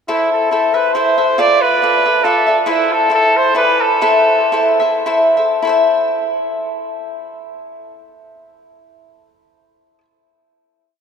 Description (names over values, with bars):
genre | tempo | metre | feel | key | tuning
mexican folk, mariachi | 99-141 BPM | 3/4 | straight | A minor | A4 = 440 Hz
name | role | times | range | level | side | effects
clear trumpet | melody | 0.1-5.1 s | E4 to D5 | -15 LUFS | right 1 dB | none
cavaquinho | accompaniment | 0.1-10.0 s | E4 to E5 | -15 LUFS | left 2 dB | none
room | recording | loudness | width
wet cathedral reverb, RT60 5.2 s | recorded in a church or concert hall | -12 LUFS | side -6 dB against mid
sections
0.1-5.6 A section; 5.6-9.2 final chord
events
slowing down 2.7-5.6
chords
0.1 Am; 1.4 Dmadd9; 2.7 Am/E; 3.6 E7; 4.0 Am